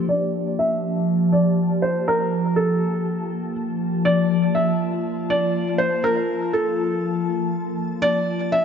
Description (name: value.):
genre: hip hop.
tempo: 121 BPM.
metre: 4/4.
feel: half-time.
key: G dorian.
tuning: A4 = 436 Hz.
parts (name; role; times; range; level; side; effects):
felt-muted upright piano; melody; 0.0-8.6 s; A4 to E5; -22 LUFS; equal; low-pass filter, digital delay.
glassy FM pad; sustained chords; 0.0-8.6 s; F3 to A5; -21 LUFS; left 1 dB; ensemble chorus, built-in reverb, phaser, low-pass filter.
room: wet lush hall reverb, RT60 2.2 s.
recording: nothing above 7.8 kHz.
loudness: -19 LUFS.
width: side -7 dB against mid.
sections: 0.1-8.0 A section.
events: filter sweep 0.1-8.0.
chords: 0.1 Gm9.